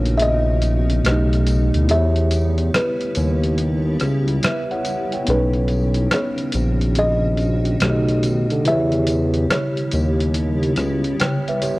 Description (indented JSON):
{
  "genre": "lo-fi hip hop",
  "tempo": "71 BPM",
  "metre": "4/4",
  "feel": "swing 66% on 16ths",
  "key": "unclear",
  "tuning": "A4 = 438 Hz",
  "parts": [
    { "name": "buzzing kalimba", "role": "melody", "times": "0.0-10.7 s", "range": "B4 to E5", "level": "-24 LUFS", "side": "equal", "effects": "low-pass filter" },
    { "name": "mellow tine electric piano", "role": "accompaniment", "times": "0.0-11.8 s", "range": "B2 to G5", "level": "-24 LUFS", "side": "right 1 dB", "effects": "medium stereo tremolo, low-pass filter" },
    { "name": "granular cloud pad", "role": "sustained chords", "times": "0.0-11.8 s", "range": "C#3 to G4", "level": "-28 LUFS", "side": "equal", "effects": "built-in reverb, low-pass filter" },
    { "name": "smooth synth bass", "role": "bass", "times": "0.0-11.2 s", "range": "A#1 to E2", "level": "-18 LUFS", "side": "equal", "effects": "none" },
    { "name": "dusty soul sampler-style drum kit", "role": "drums", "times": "0.1-11.8 s", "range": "hi-hat, rim click", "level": "-24 LUFS", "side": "equal", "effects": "none" },
    { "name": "tambourine", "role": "percussion", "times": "0.6-11.8 s", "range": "none", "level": "-42 LUFS", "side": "left 3 dB", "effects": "none" }
  ],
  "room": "digital ambience",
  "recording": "worn, warbling old tape, cassette tape, warbly pitch drift",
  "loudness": "-17 LUFS",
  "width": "side -20 dB against mid",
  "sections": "0.0-11.8 A section",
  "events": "break 0.0-11.8",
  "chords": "0.0 Bmaj9; 1.0 B7alt; 1.9 Em6; 5.3 Bmaj9; 7.8 B7alt; 8.7 Em6"
}